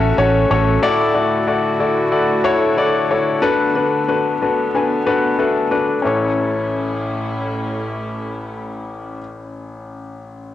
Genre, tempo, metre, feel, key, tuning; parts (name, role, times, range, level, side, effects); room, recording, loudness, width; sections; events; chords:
piano-driven pop; 92 BPM; 4/4; straight; A major; A4 = 439 Hz
clear concert grand piano; accompaniment; 0.0-10.5 s; A1 to A5; -17 LUFS; left 3 dB
warm studio string section; sustained chords; 0.0-9.2 s; A2 to F#4; -26 LUFS; right 2 dB
fingered electric bass; bass; 0.0-0.8 s; A1; -17 LUFS; right 2 dB
moderate spring reverb, RT60 2.0 s, studio reverb; home recording on cassette; -15 LUFS; side -12 dB against mid
0.0-6.0 A section; 6.0-8.7 B section
grand piano fill 4.1-6.0
0.0 F#m/A; 0.8 Dadd9; 3.4 Bm7; 6.0 A